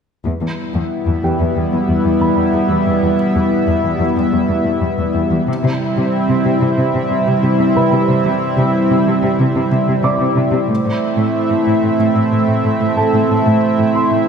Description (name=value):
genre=cinematic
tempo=92 BPM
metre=4/4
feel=straight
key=E minor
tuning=A4 = 438 Hz
part: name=chorused pulse-width pad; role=sustained chords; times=0.3-14.3 s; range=G3 to E5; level=-15 LUFS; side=right 1 dB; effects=none
part: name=dark symphonic cello section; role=bass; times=0.3-14.2 s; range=E2 to C3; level=-18 LUFS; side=left 1 dB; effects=none
part: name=dark concert grand piano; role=texture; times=1.2-14.3 s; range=G4 to D6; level=-23 LUFS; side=right 2 dB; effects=ping-pong delay
room=moderate scoring stage reverb, RT60 1.6 s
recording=none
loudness=-13 LUFS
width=side -6 dB against mid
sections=0.3-14.3 A section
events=build-up 0.3-14.3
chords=0.3 Em; 5.5 C; 10.7 Am